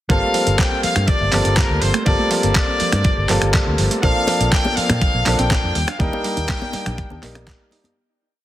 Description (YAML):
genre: nu-disco, nu disco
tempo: 122 BPM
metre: 4/4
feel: straight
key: G minor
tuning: A4 = 444 Hz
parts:
  - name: bright trumpet section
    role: melody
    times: 0.1-7.4 s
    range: Bb4 to G5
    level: -23 LUFS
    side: left 2 dB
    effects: dub echo
  - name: clear baby grand piano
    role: accompaniment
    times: 0.1-7.9 s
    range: F3 to Bb4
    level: -22 LUFS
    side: equal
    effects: vintage 12-bit sampler grit, sidechain pumping
  - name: wide unison pluck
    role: arpeggios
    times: 0.1-7.9 s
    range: F3 to Bb4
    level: -29 LUFS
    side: right 4 dB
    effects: flanger, sidechain pumping, dub echo
  - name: fingered electric bass with an envelope filter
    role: bass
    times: 0.1-7.5 s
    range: G1 to Bb2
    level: -21 LUFS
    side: equal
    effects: none
  - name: dusty soul sampler-style drum kit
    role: drums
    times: 0.1-7.9 s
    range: finger snaps, handclaps, hi-hat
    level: -23 LUFS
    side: right 1 dB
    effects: overdrive
  - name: electronic kick drum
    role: drums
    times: 0.1-7.6 s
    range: none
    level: -20 LUFS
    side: equal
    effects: none
  - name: congas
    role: percussion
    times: 4.0-7.9 s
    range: none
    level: -27 LUFS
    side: left 2 dB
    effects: none
room: light reverb, small room ambience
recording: heavily compressed radio sound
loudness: -15 LUFS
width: side -13 dB against mid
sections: 0.1-8.0 drop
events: drop 0.1-8.0; fade-out 5.3-8.0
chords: 0.1 Gm11; 4.0 Bbmaj9; 5.8 Ebmaj7